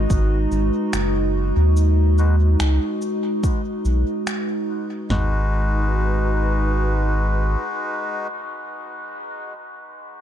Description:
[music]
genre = ambient dub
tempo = 72 BPM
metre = 4/4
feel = straight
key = G# minor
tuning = A4 = 440 Hz
[part]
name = warbly tape-like pad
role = sustained chords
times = 0.0-8.7 s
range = G#3 to B4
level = -24 LUFS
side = right 1 dB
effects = chorus, built-in reverb
[part]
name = round analog bass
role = bass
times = 0.0-7.6 s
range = F#1 to D#2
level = -18 LUFS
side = equal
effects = none
[part]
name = drifting glass-harmonics texture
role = texture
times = 0.0-5.1 s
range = D#4 to D#5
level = -39 LUFS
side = left 1 dB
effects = chorus, built-in reverb
[part]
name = deep house drum kit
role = drums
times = 0.1-5.3 s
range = kick drum, snare drum, toms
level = -21 LUFS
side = equal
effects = overdrive
[part]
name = electronic cabasa and finger snaps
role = drums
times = 0.1-4.4 s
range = none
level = -32 LUFS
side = equal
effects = overdrive, dub echo
[part]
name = melodica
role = stabs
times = 2.2-8.3 s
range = G#3 to B4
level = -28 LUFS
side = left 2 dB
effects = low-pass filter, dub echo
[sound]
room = little or no reverb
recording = dark, warm production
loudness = -18 LUFS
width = side -10 dB against mid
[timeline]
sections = 0.0-5.1 A section; 5.1-8.4 B section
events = none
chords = 0.0 G#m7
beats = 0.10 0.93 | 1.77 2.60 3.43 4.27 | 5.10 5.93 6.77 7.60

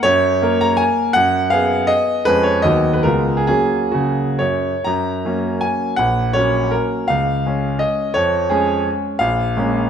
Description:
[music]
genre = classical, romantic triple-time dance for piano with dotted rhythms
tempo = 117-178 BPM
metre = 3/4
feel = rubato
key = F# major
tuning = A4 = 441 Hz
[part]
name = clear concert grand piano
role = solo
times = 0.0-9.9 s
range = A#1 to Bb5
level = -15 LUFS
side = equal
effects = none
[sound]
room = moderate recital hall reverb, RT60 1.6 s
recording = none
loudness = -15 LUFS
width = side -8 dB against mid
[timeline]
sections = 0.0-4.9 A section; 4.9-9.9 B section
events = none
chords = 0.0 Gb; 1.2 G#m7/F#; 2.3 C#/E#; 2.6 B/D#; 3.0 C#7; 3.5 F#; 6.0 F#/A#; 7.1 C#; 8.1 C#/E#; 9.2 Bbm7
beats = | 0.05 0.42 0.80 | 1.15 1.52 1.90 | 2.26 2.63 3.04 | 3.48 3.93 4.40 | 4.86 5.25 5.62 | 5.98 6.35 6.72 | 7.09 7.45 7.80 | 8.14 8.49 8.86 | 9.20 9.56

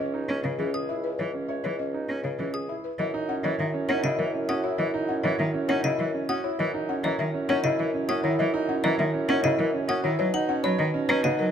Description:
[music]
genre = classical, minimalist pattern music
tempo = 200 BPM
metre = 6/4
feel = straight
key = unclear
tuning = A4 = 440 Hz
[part]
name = buzzing marimba with soft mallets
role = melody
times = 0.0-11.5 s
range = G#4 to F#5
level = -31 LUFS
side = left 8 dB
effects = none
[part]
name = clear concert grand piano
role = arpeggios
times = 0.0-11.4 s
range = C#4 to C#5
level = -31 LUFS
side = right 4 dB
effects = none
[part]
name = mellow bassoon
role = bass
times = 0.0-11.5 s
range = C#2 to B2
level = -32 LUFS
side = right 1 dB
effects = none
[part]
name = clear cello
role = accompaniment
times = 0.3-11.5 s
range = C#3 to C#4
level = -28 LUFS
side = right 1 dB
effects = none
[part]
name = xylophone with wooden mallets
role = arpeggios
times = 0.7-11.4 s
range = D#5 to D#6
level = -32 LUFS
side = left 4 dB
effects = none
[part]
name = mellow French horn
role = second line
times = 3.0-11.5 s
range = D#4 to E4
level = -33 LUFS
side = right 3 dB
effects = none
[sound]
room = light reverb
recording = close, detailed microphones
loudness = -24 LUFS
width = side -8 dB against mid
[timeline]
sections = 0.0-3.0 A section; 3.0-11.5 A section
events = none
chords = 0.0 C#m; 3.0 F#7(no3); 10.2 Bmaj7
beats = 0.29 0.59 0.89 | 1.19 1.49 1.79 2.09 2.39 2.69 | 2.99 3.29 3.59 3.89 4.19 4.49 | 4.79 5.09 5.39 5.69 5.99 6.29 | 6.59 6.89 7.19 7.49 7.79 8.09 | 8.39 8.69 8.99 9.29 9.59 9.89 | 10.19 10.49 10.79 11.09 11.39

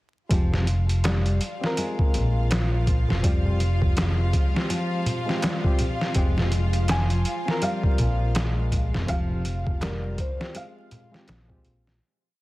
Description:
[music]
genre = trip hop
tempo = 82 BPM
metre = 4/4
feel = swing 59% on 16ths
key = F minor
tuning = A4 = 439 Hz
[part]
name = reed electric piano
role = accompaniment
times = 0.3-12.0 s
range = Ab3 to Bb4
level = -34 LUFS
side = equal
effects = tremolo, tape echo
[part]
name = dark studio violin section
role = sustained chords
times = 0.3-12.0 s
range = F4 to F5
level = -36 LUFS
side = left 1 dB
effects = none
[part]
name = nylon-string guitar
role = arpeggios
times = 0.3-11.6 s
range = F3 to Ab3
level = -32 LUFS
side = left 1 dB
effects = vintage 12-bit sampler grit, tape echo
[part]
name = fingered electric bass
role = bass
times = 0.3-12.0 s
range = F1 to Bb1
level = -24 LUFS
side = equal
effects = none
[part]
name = trip hop sampler-style drum kit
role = drums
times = 0.3-12.0 s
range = hi-hat, kick drum, snare drum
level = -25 LUFS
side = equal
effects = studio reverb
[part]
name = bowed-like drone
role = texture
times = 1.5-12.0 s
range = F3 to F4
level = -37 LUFS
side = right 1 dB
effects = built-in reverb
[part]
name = darbuka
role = percussion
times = 0.5-11.8 s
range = none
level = -33 LUFS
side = equal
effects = none
[part]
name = felt-muted upright piano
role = melody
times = 6.9-11.6 s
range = Bb4 to Ab5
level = -34 LUFS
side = equal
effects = tape echo
[sound]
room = studio reverb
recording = dense, heavily limited modern master, vinyl crackle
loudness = -21 LUFS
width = side -19 dB against mid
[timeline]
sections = 0.3-12.0 groove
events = fade-out 8.1-12.0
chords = 0.3 Fmadd9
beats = | 0.31 1.04 1.77 2.50 | 3.23 3.97 4.70 5.43 | 6.16 6.89 7.62 8.36 | 9.09 9.82 10.55 11.28

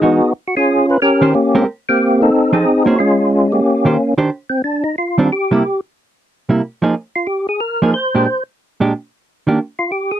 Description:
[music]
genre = jazz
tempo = 182 BPM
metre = 4/4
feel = swing 62% on 8ths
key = Eb major from 4.3 s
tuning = A4 = 438 Hz
[part]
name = percussive tonewheel organ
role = melody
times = 0.0-10.2 s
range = Ab3 to C5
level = -13 LUFS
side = equal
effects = slow rotary speaker, chorus vibrato
[part]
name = hollow-body jazz guitar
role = accompaniment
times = 0.0-9.6 s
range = Bb2 to C5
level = -14 LUFS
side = right 2 dB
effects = none
[sound]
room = little or no reverb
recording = dry, close 1970s-style studio recording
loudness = -13 LUFS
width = side -10 dB against mid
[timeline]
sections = 0.0-4.3 A section; 4.3-10.2 B section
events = tonewheel organ solo 4.3-10.2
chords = 0.3 Db7; 1.0 Eb6; 1.7 Eb6/Bb; 2.3 F7; 3.0 Bbm7; 3.6 Eb6; 4.3 Ebmaj13; 5.6 C7; 6.9 Fm11; 8.3 Bb6; 9.6 N.C.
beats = 0.01 | 0.34 0.67 1.00 1.33 | 1.66 1.99 2.32 2.65 | 2.98 3.31 3.64 3.97 | 4.30 4.63 4.96 5.29 | 5.62 5.95 6.28 6.61 | 6.94 7.27 7.60 7.93 | 8.26 8.59 8.92 9.26 | 9.59 9.92

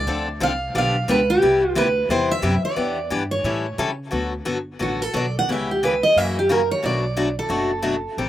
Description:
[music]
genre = acoustic string swing (jazz manouche)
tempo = 177 BPM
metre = 4/4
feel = swing 60% on 8ths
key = D major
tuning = A4 = 440 Hz
[part]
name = picked steel-string acoustic guitar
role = melody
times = 0.0-8.2 s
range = F#4 to F#5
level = -21 LUFS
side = right 1 dB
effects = slapback echo
[part]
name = upright bass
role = bass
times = 0.0-8.3 s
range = F#1 to C#3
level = -27 LUFS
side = equal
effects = none
[part]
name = picked steel-string acoustic guitar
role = accompaniment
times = 0.1-8.3 s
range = B2 to A4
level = -24 LUFS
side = left 3 dB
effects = slapback echo
[sound]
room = light reverb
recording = recorded outdoors, with no room sound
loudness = -19 LUFS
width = side -12 dB against mid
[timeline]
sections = 0.0-4.1 A section; 4.1-8.3 B section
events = steel-string acoustic guitar solo 4.1-8.3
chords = 0.1 Dm7; 0.7 G7; 1.4 Cmaj7; 2.8 Em7; 3.5 A7; 4.1 D6; 5.5 C#m7b5; 6.2 F#7; 6.8 Bm7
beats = | 0.07 0.41 0.75 1.09 | 1.43 1.76 2.10 2.44 | 2.78 3.12 3.45 3.79 | 4.13 4.47 4.81 5.14 | 5.48 5.82 6.16 6.50 | 6.83 7.17 7.51 7.85 | 8.18

